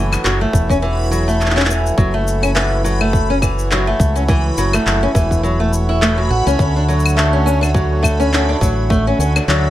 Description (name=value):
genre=folktronica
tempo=104 BPM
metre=4/4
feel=swing 56% on 16ths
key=F# minor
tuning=A4 = 442 Hz
part: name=pedal harmonium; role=sustained chords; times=0.0-9.7 s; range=D3 to C#5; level=-23 LUFS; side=right 1 dB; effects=none
part: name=picked old ladder-braced acoustic guitar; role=arpeggios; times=0.0-9.7 s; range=E3 to F#4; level=-18 LUFS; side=equal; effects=tape echo
part: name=fingered electric bass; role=bass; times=0.0-9.7 s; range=E1 to D2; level=-17 LUFS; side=equal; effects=tube saturation
part: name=backwards swelling texture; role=texture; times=0.0-9.7 s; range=B5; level=-30 LUFS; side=left 2 dB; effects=built-in reverb
part: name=electronic handclaps, claves and shaker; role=drums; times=0.1-9.6 s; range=none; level=-21 LUFS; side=left 1 dB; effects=overdrive
part: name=electronic kick drum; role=drums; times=0.5-9.0 s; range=none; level=-17 LUFS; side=equal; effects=overdrive
room=light reverb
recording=none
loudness=-13 LUFS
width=side -14 dB against mid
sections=0.0-9.7 A section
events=none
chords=0.0 F#m7; 6.6 Dmaj7